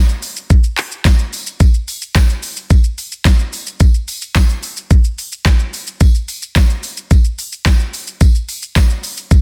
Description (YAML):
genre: pop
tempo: 109 BPM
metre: 4/4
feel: straight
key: none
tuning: none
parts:
  - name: pop drum kit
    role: drums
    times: 0.1-9.4 s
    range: handclaps, hi-hat, kick drum, shaker, snare drum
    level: -14 LUFS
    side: equal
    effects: none
  - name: tambourine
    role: percussion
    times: 0.2-9.4 s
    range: none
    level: -34 LUFS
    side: equal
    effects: none
room: little or no reverb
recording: dense, heavily limited modern master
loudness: -15 LUFS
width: mono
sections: 0.0-9.4 A section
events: none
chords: none